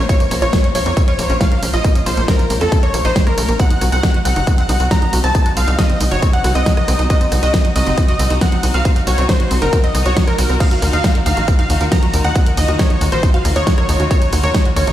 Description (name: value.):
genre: uplifting trance.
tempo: 137 BPM.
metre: 4/4.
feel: straight.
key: unclear.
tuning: A4 = 436 Hz.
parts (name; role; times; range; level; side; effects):
dark studio string section; sustained chords; 0.0-14.9 s; C3 to Db5; -25 LUFS; left 1 dB; sidechain pumping.
tight sequencer bass; bass; 0.0-14.9 s; Gb1 to F2; -17 LUFS; equal; sidechain pumping.
dense compressed supersaw; melody; 0.1-14.9 s; A4 to Bb5; -21 LUFS; equal; sidechain pumping, tape echo.
wide unison pluck; second line; 0.1-14.9 s; A4 to Bb5; -25 LUFS; equal; sidechain pumping, dub echo.
tight sequenced synth; arpeggios; 0.1-14.9 s; Bb2 to Bb4; -26 LUFS; right 2 dB; chorus, sidechain pumping, dub echo.
big-room dance drum kit; drums; 0.1-14.9 s; crash cymbal, hi-hat, ride cymbal, rim click, snare drum, tambourine; -23 LUFS; right 1 dB; none.
electronic kick drum; drums; 0.1-14.6 s; none; -15 LUFS; equal; none.
room: light reverb.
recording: played on a big sound system in a bare room, stone room reverb.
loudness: -12 LUFS.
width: side -12 dB against mid.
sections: 0.0-14.9 A section.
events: none.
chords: 0.0 Bbmadd9; 3.6 Cdim; 10.6 Ebmadd9.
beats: | 0.09 0.53 0.97 1.41 | 1.84 2.28 2.72 3.16 | 3.60 4.03 4.47 4.91 | 5.35 5.79 6.22 6.66 | 7.10 7.54 7.98 8.41 | 8.85 9.29 9.73 10.17 | 10.60 11.04 11.48 11.92 | 12.36 12.79 13.23 13.67 | 14.11 14.54.